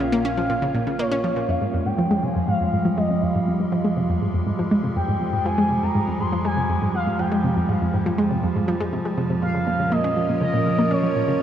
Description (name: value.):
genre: ambient, sequencer-driven space music.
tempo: 121 BPM.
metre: 4/4.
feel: straight.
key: F minor.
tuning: A4 = 440 Hz.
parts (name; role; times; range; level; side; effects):
expressive portamento lead; melody; 0.0-11.4 s; Db5 to C6; -26 LUFS; equal; wide subtle chorus, analog delay.
evolving wavetable pad; sustained chords; 0.0-11.4 s; F2 to Bb4; -24 LUFS; right 1 dB; chorus, built-in reverb.
analog pluck; riff; 0.0-11.3 s; F2 to Db4; -23 LUFS; equal; chorus, analog delay.
fat analog bass; bass; 0.0-1.5 s; Bb1; -35 LUFS; equal; none.
room: wet cathedral reverb, RT60 5.1 s.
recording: in a vast, echoing space.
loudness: -20 LUFS.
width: side -10 dB against mid.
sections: 0.0-1.5 A section; 1.5-11.4 B section.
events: filter sweep on synth arpeggio sound 1.5-11.4.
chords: 0.0 Bbm; 1.5 Fmadd9; 9.4 Bbm.